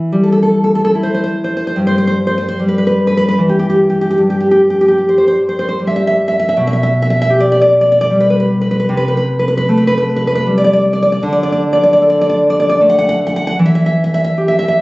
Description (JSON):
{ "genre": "romantic piece for solo classical guitar", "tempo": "76 BPM", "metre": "3/4", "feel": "rubato", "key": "E minor", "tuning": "A4 = 439 Hz", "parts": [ { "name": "nylon-string guitar", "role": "solo", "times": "0.0-14.8 s", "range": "G2 to F#5", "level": "-11 LUFS", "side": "equal", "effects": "none" } ], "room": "wet recital hall reverb, RT60 1.3 s", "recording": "recorded on a phone in the room, studio reverb, compression, nothing above 7.9 kHz", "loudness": "-11 LUFS", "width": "side -20 dB against mid", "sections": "0.0-14.8 A section", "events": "none", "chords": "0.0 Em; 1.8 Em/G; 4.2 N.C.; 6.5 G/B; 8.9 Am7/C; 11.2 D5; 13.6 Em" }